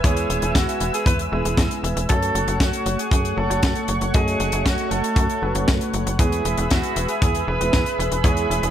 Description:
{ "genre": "italo disco", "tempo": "117 BPM", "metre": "4/4", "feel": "straight", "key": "E major", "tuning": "A4 = 445 Hz", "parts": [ { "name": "warm alto saxophone", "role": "melody", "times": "0.0-8.7 s", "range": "F#4 to B4", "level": "-26 LUFS", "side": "right 2 dB", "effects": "tape echo" }, { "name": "lush unison pad", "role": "sustained chords", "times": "0.0-8.7 s", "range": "A3 to E6", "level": "-26 LUFS", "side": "right 1 dB", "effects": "chorus" }, { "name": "warm concert grand piano", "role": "stabs", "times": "0.0-8.7 s", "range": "G#3 to D#5", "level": "-30 LUFS", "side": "right 1 dB", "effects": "none" }, { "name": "tight sequencer bass", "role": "bass", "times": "0.0-8.7 s", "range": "E1 to F#2", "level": "-25 LUFS", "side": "equal", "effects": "tube saturation" }, { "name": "kick drum", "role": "drums", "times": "0.0-8.3 s", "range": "none", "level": "-21 LUFS", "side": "equal", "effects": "none" }, { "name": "tight funk drum kit", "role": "drums", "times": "0.0-8.7 s", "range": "hi-hat, snare drum", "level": "-27 LUFS", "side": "left 2 dB", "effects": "none" } ], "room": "light reverb, small room reverb", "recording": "none", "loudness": "-18 LUFS", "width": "side -10 dB against mid", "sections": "0.0-8.7 A section", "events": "none", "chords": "0.0 E; 2.1 F#m; 6.2 E", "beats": "| 0.04 0.55 1.07 1.58 | 2.09 2.60 3.12 3.63 | 4.14 4.66 5.17 5.68 | 6.20 6.71 7.22 7.73 | 8.25" }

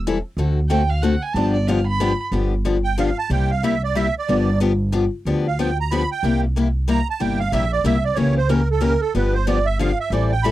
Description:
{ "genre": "acoustic string swing (jazz manouche)", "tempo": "185 BPM", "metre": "3/4", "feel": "swing 61% on 8ths", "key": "G mixolydian", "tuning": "A4 = 441 Hz", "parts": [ { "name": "upright bass", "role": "bass", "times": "0.0-10.5 s", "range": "E1 to D2", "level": "-21 LUFS", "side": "right 1 dB", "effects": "none" }, { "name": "picked steel-string acoustic guitar", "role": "accompaniment", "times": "0.1-10.5 s", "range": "C3 to A4", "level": "-22 LUFS", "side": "left 4 dB", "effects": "none" }, { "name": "rich violin", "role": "second line", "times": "0.7-2.2 s", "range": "D5 to B5", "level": "-25 LUFS", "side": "right 5 dB", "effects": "none" }, { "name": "musette accordion", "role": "melody", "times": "2.8-10.5 s", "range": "A4 to B5", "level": "-23 LUFS", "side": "right 6 dB", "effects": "none" } ], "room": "little or no reverb", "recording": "dry, close 1970s-style studio recording", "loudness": "-18 LUFS", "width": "side -14 dB against mid", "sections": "0.0-2.3 A section; 2.3-10.5 A section", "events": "violin solo 0.0-2.3; accordion solo 2.3-10.5", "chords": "0.4 D7; 1.4 G7; 3.3 C7; 4.3 G7; 6.2 C7; 8.2 C#dim7; 9.1 G7", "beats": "0.05 | 0.38 0.70 1.03 | 1.35 1.68 2.00 | 2.33 2.65 2.98 | 3.30 3.63 3.95 | 4.28 4.60 4.92 | 5.25 5.57 5.90 | 6.22 6.55 6.87 | 7.20 7.52 7.84 | 8.17 8.49 8.81 | 9.14 9.46 9.79 | 10.11 10.43" }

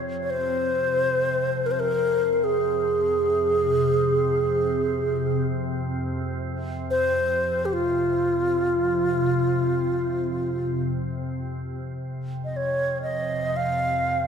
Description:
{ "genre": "world meditative, free-time meditation music", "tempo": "free time", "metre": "none", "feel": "none", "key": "F minor", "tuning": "A4 = 439 Hz", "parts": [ { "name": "organ-like drone", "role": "drone", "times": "0.0-14.3 s", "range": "F2 to C3", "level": "-28 LUFS", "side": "left 1 dB", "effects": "ensemble chorus, built-in reverb, phaser" }, { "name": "bright wooden-headed alto flute", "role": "melody", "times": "0.2-14.3 s", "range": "F4 to F5", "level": "-22 LUFS", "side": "equal", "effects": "none" } ], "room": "wet church reverb, RT60 2.6 s", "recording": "none", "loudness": "-22 LUFS", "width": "side -7 dB against mid", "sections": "0.0-11.5 A section; 11.5-14.3 A section", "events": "none", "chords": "none", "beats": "free time" }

